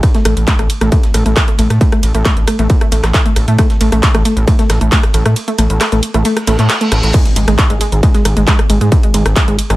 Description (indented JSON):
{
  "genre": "driving peak-time techno",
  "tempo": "135 BPM",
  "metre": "4/4",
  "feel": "straight",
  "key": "unclear",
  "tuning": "A4 = 441 Hz",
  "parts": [
    { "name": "breakbeat sampler-style drum kit", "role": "drums", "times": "0.0-9.7 s", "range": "ride cymbal, snare drum", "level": "-30 LUFS", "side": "right 2 dB", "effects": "none" },
    { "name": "electronic kick drum", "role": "drums", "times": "0.0-9.5 s", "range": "none", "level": "-12 LUFS", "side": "equal", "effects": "distortion, overdrive" },
    { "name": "techno drum kit", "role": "drums", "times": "0.0-9.8 s", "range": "crash cymbal, handclaps, hi-hat, rim click", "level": "-18 LUFS", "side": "equal", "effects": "overdrive, sidechain pumping on hats, sidechain pumping on cymbals" },
    { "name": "analog pluck", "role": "riff", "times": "0.1-9.8 s", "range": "G#3 to A3", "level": "-17 LUFS", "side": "equal", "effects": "chorus, sidechain pumping, digital delay" },
    { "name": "gritty driven synth bass", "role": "bass", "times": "0.3-9.8 s", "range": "G#1 to A2", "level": "-13 LUFS", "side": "equal", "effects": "sidechain pumping" },
    { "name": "reverse cymbal and impact", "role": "sound effects", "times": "6.4-8.9 s", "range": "none", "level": "-23 LUFS", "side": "right 1 dB", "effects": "none" }
  ],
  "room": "light reverb",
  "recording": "none",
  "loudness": "-10 LUFS",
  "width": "side -17 dB against mid",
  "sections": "0.0-7.1 A section; 7.1-9.8 B section",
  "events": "kick drops out 5.4-7.1; reverse cymbal 6.4-7.1; drop 7.1-9.8; impact 7.1-8.9",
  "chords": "none",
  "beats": "| 0.03 0.47 0.92 1.36 | 1.81 2.25 2.70 3.14 | 3.59 4.03 4.47 4.92 | 5.36 5.81 6.25 6.70 | 7.14 7.59 8.03 8.47 | 8.92 9.36"
}